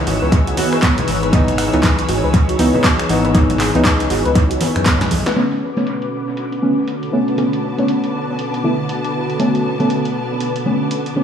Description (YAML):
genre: deep house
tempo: 119 BPM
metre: 4/4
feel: swing 61% on 16ths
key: B dorian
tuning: A4 = 440 Hz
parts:
  - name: soft string machine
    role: sustained chords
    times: 0.0-11.2 s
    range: B2 to D6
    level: -23 LUFS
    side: equal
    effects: phaser, ensemble chorus, sidechain pumping
  - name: deep mellow chord stab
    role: stabs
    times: 0.0-11.2 s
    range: D3 to F#4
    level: -19 LUFS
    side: equal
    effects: chorus, sidechain pumping, dub echo
  - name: round analog bass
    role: bass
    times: 0.0-5.2 s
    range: G#1 to F#2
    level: -21 LUFS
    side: equal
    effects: tube saturation, sidechain pumping
  - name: analog string pad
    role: texture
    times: 0.0-11.2 s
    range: B4 to E6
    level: -28 LUFS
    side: left 1 dB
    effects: ensemble chorus, phaser, sidechain pumping
  - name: soft round pluck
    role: arpeggios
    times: 0.1-5.3 s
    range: B3 to B4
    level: -24 LUFS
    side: equal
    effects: wide subtle chorus, sidechain pumping, dub echo
  - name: punchy analog drum machine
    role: drums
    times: 0.1-11.1 s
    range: finger snaps, handclaps, hi-hat, snare drum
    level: -22 LUFS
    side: equal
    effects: overdrive, low-pass filter on hats, low-pass filter on snare, low-pass filter on room, dub echo
  - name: electronic kick drum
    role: drums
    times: 0.3-5.0 s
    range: none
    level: -16 LUFS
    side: equal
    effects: none
  - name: congas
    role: percussion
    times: 0.6-5.2 s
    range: none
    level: -28 LUFS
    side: right 2 dB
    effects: none
  - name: dark studio string section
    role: texture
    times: 5.4-11.2 s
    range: D3 to A5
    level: -27 LUFS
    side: right 1 dB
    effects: sidechain pumping
room: moderate echo chamber reverb, RT60 1.6 s, digital ambience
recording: echo-heavy mix, small room ambience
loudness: -14 LUFS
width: side -8 dB against mid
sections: 0.0-5.4 A section; 5.4-11.2 B section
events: drum fill 5.0-5.4; filter sweep on drum 5.4-11.2; filter sweep on string machine 5.4-11.2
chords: 0.0 C#m9; 5.4 Bm9